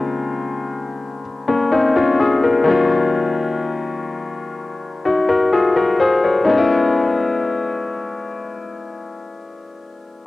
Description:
R&B; 63 BPM; 4/4; straight; A4 = 445 Hz
clear baby grand piano; solo; 0.0-10.3 s; Db3 to Db5; -17 LUFS; left 3 dB; cassette tape, analog delay
moderate booth ambience, RT60 0.2 s; home recording on cassette; -15 LUFS; side -16 dB against mid
0.0-10.3 A section
0.0 Bbm9; 2.7 Ebm9; 6.5 Dbm7
0.76 1.71 | 2.66 3.62 4.57 5.52 | 6.47 7.42 8.38 9.33

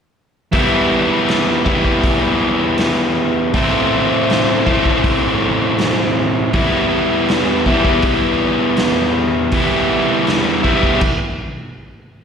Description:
blues rock power trio and southern rock; 80 BPM; 4/4; straight; E minor; A4 = 440 Hz
overdriven electric guitar; riff; 0.5-11.0 s; A2 to E4; -14 LUFS; equal; slapback echo
raw garage drum kit; drums; 0.5-11.2 s; crash cymbal, hi-hat, kick drum, snare drum; -21 LUFS; equal
moderate plate reverb, RT60 1.8 s, small room ambience; live gig heard through the venue's PA, recital hall reverb; -13 LUFS; side -7 dB against mid
0.5-12.2 A section
stop 11.0-12.2
0.5 Em; 3.5 Am; 6.5 Em
| 0.54 1.29 2.04 2.79 | 3.54 4.29 5.04 5.79 | 6.54 7.29 8.04 8.78 | 9.53 10.28 11.02

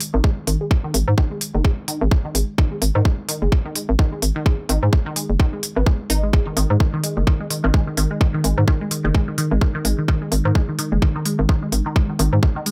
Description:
minimal techno; 128 BPM; 4/4; swing 58% on 16ths; A4 = 439 Hz
electronic hi-hat; drums; 0.0-12.7 s; -26 LUFS; equal
resonant blip pluck; riff; 0.1-12.7 s; D#3 to D#4; -27 LUFS; equal; phaser, sidechain pumping, delay
hollow knocking FM bass; bass; 0.1-12.4 s; F#1 to G#2; -21 LUFS; equal; sidechain pumping
electronic kick drum; drums; 0.2-12.5 s; -20 LUFS; equal
light reverb; -20 LUFS; mono
0.0-12.7 A section
0.0 G#5
0.24 | 0.71 1.18 1.65 2.11 | 2.58 3.05 3.52 3.99 | 4.46 4.93 5.40 5.86 | 6.33 6.80 7.27 7.74 | 8.21 8.68 9.15 9.61 | 10.08 10.55 11.02 11.49 | 11.96 12.43

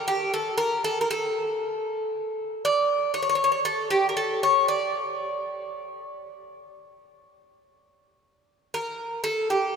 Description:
greek folk; 118 BPM (eighths); 9/8; straight; A4 = 437 Hz
Greek bouzouki; solo; 0.0-9.7 s; G4 to D5; -24 LUFS; equal
wet cathedral reverb, RT60 4.3 s; recorded in a church or concert hall; -23 LUFS; side -6 dB against mid
0.0-7.2 A section; 7.2-9.8 B section
0.09 0.59 1.10 1.61 2.12 | 2.63 3.13 3.64 4.15 4.66 5.17 5.68 6.19 6.70 | 7.21 7.71 8.22 8.73 9.24

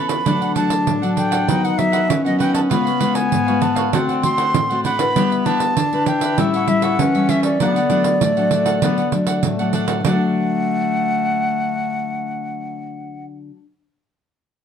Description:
samba and choro; 98 BPM; 4/4; straight; D major; A4 = 440 Hz
wooden flute; melody; 0.0-13.3 s; D5 to C6; -21 LUFS; right 1 dB
cavaquinho; accompaniment; 0.0-13.6 s; D4 to A5; -27 LUFS; right 6 dB
nylon-string guitar; accompaniment; 0.0-13.7 s; G#2 to B4; -22 LUFS; left 3 dB
pandeiro; percussion; 0.1-10.2 s; -23 LUFS; right 8 dB
clear bass clarinet; second line; 0.3-13.3 s; A3 to E4; -22 LUFS; left 5 dB
moderate studio reverb, RT60 0.7 s; dark, warm production; -16 LUFS; side -8 dB against mid
0.0-10.0 A section; 10.0-12.5 B section
0.3 D; 1.5 B/D#; 2.7 C#7; 3.9 D7; 5.2 G6; 6.4 A7; 7.6 D
| 0.26 0.88 1.49 2.10 | 2.71 3.32 3.93 4.54 | 5.16 5.77 6.38 6.99 | 7.60 8.21 8.82 9.44 | 10.05 10.66 11.27 11.89

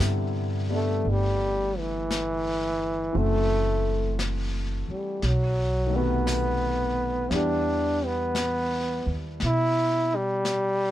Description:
jazz ballad; 57 BPM; 4/4; swing 67% on 8ths; C major; A4 = 440 Hz
clear concert grand piano; accompaniment; 0.0-10.9 s; C3 to G4; -32 LUFS; left 2 dB
upright bass; bass; 0.0-10.9 s; F#1 to B2; -28 LUFS; equal
vintage brush drum kit; drums; 0.0-10.9 s; brushed snare drum, hi-hat, snare drum; -36 LUFS; left 2 dB
clear trombone; melody; 0.8-10.9 s; E3 to E4; -26 LUFS; equal
little or no reverb; close, detailed microphones; -23 LUFS; side -13 dB against mid
0.0-10.9 A section
0.0 Cmaj9; 3.1 F#m7b5; 5.2 B7b9; 7.3 Em7
0.00 1.05 2.10 | 3.14 4.18 5.22 6.27 | 7.31 8.36 9.40 10.45

